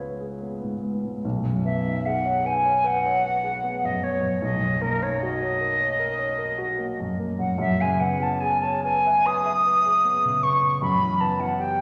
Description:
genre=classical, impressionist duo for flute and grand piano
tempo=75 BPM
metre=4/4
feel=rubato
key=B major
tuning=A4 = 440 Hz
part: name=silver concert flute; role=melody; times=0.0-11.8 s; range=A#4 to D#6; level=-24 LUFS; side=equal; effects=none
part: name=dark baby grand piano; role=accompaniment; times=0.0-11.8 s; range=B1 to E5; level=-29 LUFS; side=equal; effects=none
room=wet scoring stage reverb, RT60 1.6 s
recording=none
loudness=-23 LUFS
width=mono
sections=0.0-11.8 A section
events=none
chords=0.0 C#m7; 1.2 B69; 4.4 D#m7/B; 7.6 F#11; 10.8 Emadd9/F#

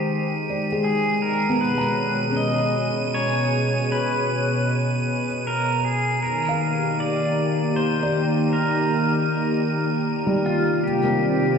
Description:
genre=ambient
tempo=78 BPM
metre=3/4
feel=straight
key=unclear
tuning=A4 = 440 Hz
part: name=pedal steel guitar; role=melody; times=0.0-11.6 s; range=F4 to D#5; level=-24 LUFS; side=equal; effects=ping-pong delay
part: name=warm analog pad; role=sustained chords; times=0.0-11.6 s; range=B2 to Bb5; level=-23 LUFS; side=equal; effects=lush chorus
part: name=felt-muted upright piano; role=arpeggios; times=0.0-11.6 s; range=G3 to Bb5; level=-28 LUFS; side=left 1 dB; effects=ping-pong delay
part: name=wind-like tuned noise texture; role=texture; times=0.0-11.6 s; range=Eb7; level=-32 LUFS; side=right 4 dB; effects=built-in reverb
room=wet cathedral reverb, RT60 6.7 s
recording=in a vast, echoing space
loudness=-20 LUFS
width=side -6 dB against mid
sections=0.0-11.6 A section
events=filter sweep on analog synth pad 0.0-11.6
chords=0.0 Abmaj7; 1.6 B6; 6.2 Eb; 10.8 Cmadd9

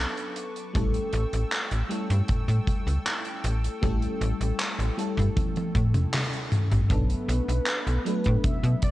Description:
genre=vaporwave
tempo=78 BPM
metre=4/4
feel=straight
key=unclear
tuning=A4 = 440 Hz
part: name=FM electric piano with soft pad layer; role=accompaniment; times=0.0-8.9 s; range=F#3 to A4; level=-32 LUFS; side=left 1 dB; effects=phaser, lush chorus, analog delay
part: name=lush unison pad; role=sustained chords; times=0.0-8.9 s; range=A3 to E6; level=-40 LUFS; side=equal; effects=chorus
part: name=slap-like FM bass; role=bass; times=0.0-8.8 s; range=A1 to B2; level=-25 LUFS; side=equal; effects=tube saturation
part: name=big rock drum kit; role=drums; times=0.2-8.9 s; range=handclaps, hi-hat, toms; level=-29 LUFS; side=equal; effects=vintage 12-bit sampler grit, gated reverb
part: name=kick drum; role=drums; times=0.8-8.9 s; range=none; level=-27 LUFS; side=equal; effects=vintage 12-bit sampler grit
part: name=warm velvety synth lead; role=melody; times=6.9-8.9 s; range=B4 to E5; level=-34 LUFS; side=equal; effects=chorus
room=light reverb, small room ambience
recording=cassette tape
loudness=-24 LUFS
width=side -16 dB against mid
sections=0.0-6.9 A section; 6.9-8.9 B section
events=drum fill 5.4-6.9; kick drops out 6.1-6.9; band accent 6.1-6.5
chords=0.0 Bm9; 0.7 A7; 6.9 Bm9

